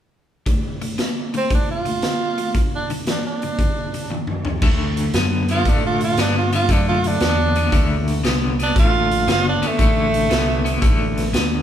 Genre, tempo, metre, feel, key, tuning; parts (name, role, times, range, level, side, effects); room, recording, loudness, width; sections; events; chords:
electric blues shuffle; 116 BPM; 4/4; swing 68% on 8ths; A4 = 444 Hz
electric guitar at the edge of break-up; riff; 0.5-11.6 s; G2 to B3; -24 LUFS; left 3 dB; tremolo
raw garage drum kit; drums; 0.5-11.5 s; crash cymbal, hi-hat, kick drum, snare drum, toms; -20 LUFS; equal
bright tenor saxophone; melody; 1.4-11.2 s; A3 to F4; -21 LUFS; right 3 dB
fingered electric bass; bass; 4.6-11.6 s; F#1 to A2; -22 LUFS; equal
moderate large studio reverb, RT60 0.8 s; band playing live in one room; -17 LUFS; side -10 dB against mid
0.5-4.6 A section; 4.6-11.6 B section
drum fill 4.1-4.6; tenor saxophone solo 4.6-11.6
0.5 D5; 2.5 G5; 4.6 D7